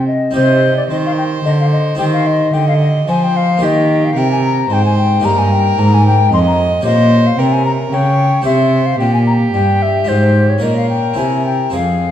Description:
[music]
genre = classical, baroque-style sonata movement with continuo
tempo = 111 BPM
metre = 3/4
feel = straight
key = C minor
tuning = A4 = 441 Hz
[part]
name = bright baroque flute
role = melody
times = 0.0-12.1 s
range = C5 to C6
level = -16 LUFS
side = left 6 dB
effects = none
[part]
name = rich violin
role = second line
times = 0.0-12.1 s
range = G4 to Eb5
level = -20 LUFS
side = right 6 dB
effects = none
[part]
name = harpsichord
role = accompaniment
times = 0.0-12.1 s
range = F2 to C5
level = -20 LUFS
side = equal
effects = none
[part]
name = warm cello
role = bass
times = 0.0-12.1 s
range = F2 to F3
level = -14 LUFS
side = right 1 dB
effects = none
[sound]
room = wet recital hall reverb, RT60 1.6 s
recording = dark, warm production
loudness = -11 LUFS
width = side -10 dB against mid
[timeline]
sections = 0.4-12.1 A section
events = none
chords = 0.4 Cm; 3.6 Eb; 5.2 Eb/G; 6.9 Gdim/Bb; 8.5 C5; 10.1 Fm/Ab; 10.6 Bbm; 11.2 C7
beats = | 0.35 0.90 1.45 | 1.99 2.54 3.08 | 3.62 4.17 4.71 | 5.24 5.78 6.32 | 6.86 7.39 7.93 | 8.46 9.01 9.55 | 10.09 10.63 11.18 | 11.74

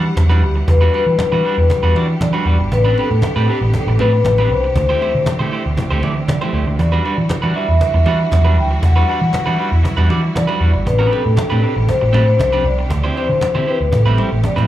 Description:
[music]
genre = disco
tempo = 118 BPM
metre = 4/4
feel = straight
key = A dorian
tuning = A4 = 437 Hz
[part]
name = vibraphone with soft mallets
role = melody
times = 0.0-14.7 s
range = G4 to G5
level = -19 LUFS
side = left 3 dB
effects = slapback echo
[part]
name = electric guitar at the edge of break-up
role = accompaniment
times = 0.0-14.7 s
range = G3 to D5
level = -22 LUFS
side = right 3 dB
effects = slapback echo
[part]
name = bright studio string section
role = sustained chords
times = 0.0-14.7 s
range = B2 to F#5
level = -26 LUFS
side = equal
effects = none
[part]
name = picked electric bass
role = bass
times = 0.0-14.7 s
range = G1 to E3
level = -15 LUFS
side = equal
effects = none
[part]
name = cajon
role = drums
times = 0.1-14.7 s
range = none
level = -21 LUFS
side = right 1 dB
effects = none
[part]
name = congas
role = percussion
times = 0.2-14.7 s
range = none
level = -28 LUFS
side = left 5 dB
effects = none
[sound]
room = light reverb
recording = live gig heard through the venue's PA, club reverb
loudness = -13 LUFS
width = side -13 dB against mid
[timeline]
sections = 0.0-14.7 A section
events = drum fill 14.4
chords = 0.0 Em9; 2.7 Am11; 4.8 D9sus4; 6.8 Em9; 10.9 Am11; 12.9 D9sus4; 13.9 Am9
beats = 0.17 | 0.68 1.19 1.70 2.21 | 2.72 3.23 3.74 4.25 | 4.76 5.26 5.77 6.28 | 6.79 7.30 7.81 8.32 | 8.83 9.34 9.85 10.36 | 10.87 11.38 11.88 12.39 | 12.90 13.41 13.92 14.43

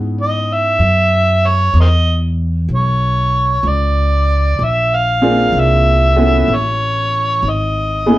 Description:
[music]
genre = jazz ballad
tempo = 63 BPM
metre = 4/4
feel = swing 68% on 8ths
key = unclear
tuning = A4 = 441 Hz
[part]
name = clear baby grand piano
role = accompaniment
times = 0.0-8.2 s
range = A3 to G#4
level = -16 LUFS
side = equal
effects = none
[part]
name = upright bass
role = bass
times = 0.0-8.2 s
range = G#1 to G#2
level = -15 LUFS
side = equal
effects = none
[part]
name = overdriven harmonica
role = melody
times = 0.2-8.2 s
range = A#4 to E#5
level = -15 LUFS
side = right 1 dB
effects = none
[sound]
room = moderate studio reverb, RT60 0.6 s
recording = heard from further back in the room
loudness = -12 LUFS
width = side -16 dB against mid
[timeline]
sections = 0.0-8.2 A section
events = harmonica solo 0.0-8.2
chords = 0.0 C#m7; 2.7 Bmadd9; 4.6 A#9; 6.5 Amaj7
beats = 0.79 1.74 | 2.69 3.64 4.59 5.53 | 6.48 7.43

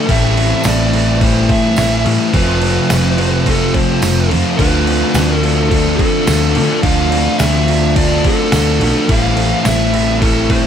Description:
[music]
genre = rock, shoegaze and dream pop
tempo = 107 BPM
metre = 4/4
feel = straight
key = unclear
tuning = A4 = 445 Hz
[part]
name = fuzz lead guitar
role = melody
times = 0.0-10.7 s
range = A4 to F5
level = -20 LUFS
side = equal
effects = distortion, digital delay
[part]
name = direct-recorded clean electric guitar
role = arpeggios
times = 0.0-10.7 s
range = F3 to E4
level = -26 LUFS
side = right 9 dB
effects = none
[part]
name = biting overdriven guitar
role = riff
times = 0.0-10.7 s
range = A2 to F4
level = -21 LUFS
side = equal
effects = none
[part]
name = overdriven semi-hollow guitar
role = riff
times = 0.0-10.7 s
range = F2 to F4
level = -20 LUFS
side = right 9 dB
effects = reverse reverb
[part]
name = thick fuzz guitar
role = riff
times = 0.0-10.7 s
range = F2 to D4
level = -17 LUFS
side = left 10 dB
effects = distortion, analog chorus
[part]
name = hollow-body short-scale fingered electric bass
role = bass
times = 0.1-10.5 s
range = F1 to D3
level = -17 LUFS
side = equal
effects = none
[part]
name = detuned 8-bit digital drum machine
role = drums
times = 0.1-10.6 s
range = crash cymbal, kick drum, snare drum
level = -18 LUFS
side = right 1 dB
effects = none
[part]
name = tambourine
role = percussion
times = 0.6-9.8 s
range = none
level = -27 LUFS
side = right 8 dB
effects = none
[sound]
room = little or no reverb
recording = none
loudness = -11 LUFS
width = side -8 dB against mid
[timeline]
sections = 0.0-10.7 A section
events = none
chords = 0.1 Am7; 2.3 F; 4.6 Dm7; 9.1 Am7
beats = | 0.09 0.65 1.22 1.78 | 2.34 2.91 3.47 4.03 | 4.60 5.16 5.72 6.28 | 6.85 7.41 7.97 8.54 | 9.10 9.66 10.22

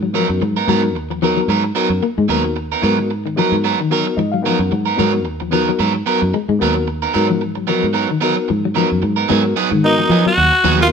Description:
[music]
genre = afrobeat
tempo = 112 BPM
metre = 4/4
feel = swing 56% on 16ths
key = G# dorian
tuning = A4 = 440 Hz
[part]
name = electric guitar at the edge of break-up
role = arpeggios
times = 0.0-10.9 s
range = D#3 to A#3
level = -21 LUFS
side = left 8 dB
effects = tremolo
[part]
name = fingered electric bass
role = bass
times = 0.0-10.9 s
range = D#2 to E#3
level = -19 LUFS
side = right 1 dB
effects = none
[part]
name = reed electric piano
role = accompaniment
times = 0.1-10.9 s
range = B3 to F#5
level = -21 LUFS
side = left 4 dB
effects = overdrive, medium tremolo
[part]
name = electric guitar at the edge of break-up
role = stabs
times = 0.1-10.8 s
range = F#3 to A#4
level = -19 LUFS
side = right 7 dB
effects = none
[part]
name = raspy tenor saxophone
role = melody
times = 9.8-10.9 s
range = D#4 to F#4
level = -14 LUFS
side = equal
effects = none
[part]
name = bright alto saxophone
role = second line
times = 9.8-10.9 s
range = D#4 to F#4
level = -22 LUFS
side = right 3 dB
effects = none
[sound]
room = moderate stone room reverb, RT60 1.1 s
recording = band playing live in one room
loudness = -14 LUFS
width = side -6 dB against mid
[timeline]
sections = 0.0-9.3 A section; 9.3-10.9 B section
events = reed electric piano fill 3.9-5.0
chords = 0.0 G#m9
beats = 0.15 | 0.68 1.22 1.76 2.30 | 2.83 3.37 3.91 4.45 | 4.99 5.53 6.07 6.61 | 7.14 7.68 8.22 8.76 | 9.30 9.84 10.37 10.91

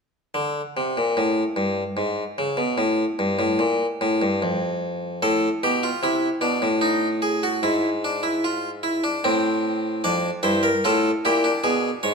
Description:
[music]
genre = classical, baroque-style 3-part fugue for harpsichord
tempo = 74 BPM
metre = 3/4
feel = straight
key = D minor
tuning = A4 = 440 Hz
[part]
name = harpsichord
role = solo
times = 0.3-12.1 s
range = F2 to D5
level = -20 LUFS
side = equal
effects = none
[sound]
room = wet recital hall reverb, RT60 1.5 s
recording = none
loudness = -20 LUFS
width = side -4 dB against mid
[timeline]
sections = 0.3-12.1 A section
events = none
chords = 0.3 N.C.; 5.2 Am; 6.8 F#m69/A; 7.6 E7/G#; 9.2 Am; 10.0 Dm/F; 11.6 G#dim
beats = | 0.35 1.16 1.97 | 2.78 3.60 4.41 | 5.21 6.02 6.82 | 7.62 8.43 9.23 | 10.02 10.82 11.63

